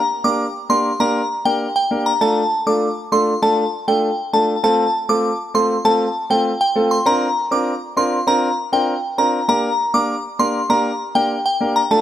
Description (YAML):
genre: dancehall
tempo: 99 BPM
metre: 4/4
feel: straight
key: G minor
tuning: A4 = 443 Hz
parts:
  - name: glassy synth bell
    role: melody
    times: 0.0-12.0 s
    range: G5 to D6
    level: -18 LUFS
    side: equal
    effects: chorus, digital delay
  - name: warm concert grand piano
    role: accompaniment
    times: 0.2-12.0 s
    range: A3 to Bb4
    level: -19 LUFS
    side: equal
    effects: none
room: light reverb, small room reverb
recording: none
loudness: -16 LUFS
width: side -11 dB against mid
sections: 0.0-12.0 A section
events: none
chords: 0.0 Gm; 2.2 Dm; 4.6 F; 7.1 Bbadd9; 9.5 Gm